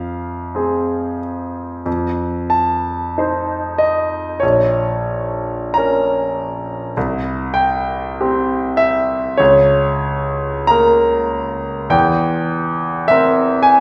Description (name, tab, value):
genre	classical, romantic nocturne for solo piano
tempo	43-52 BPM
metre	4/4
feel	rubato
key	F minor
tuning	A4 = 440 Hz
part	bright concert grand piano	solo	0.0-13.8 s	Bb1 to Bb5	-17 LUFS	equal	none
room	wet recital hall reverb, RT60 1.4 s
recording	heard from further back in the room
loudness	-17 LUFS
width	mono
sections	0.0-13.8 A section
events	none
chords	0.0 Fm; 1.9 F7; 4.4 Bbm; 7.0 C5; 9.4 Bbm/Db; 11.9 C7/E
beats	0.55 | 1.87 3.19 4.43 5.75 | 6.96 8.20 9.40 10.71 | 11.94 13.10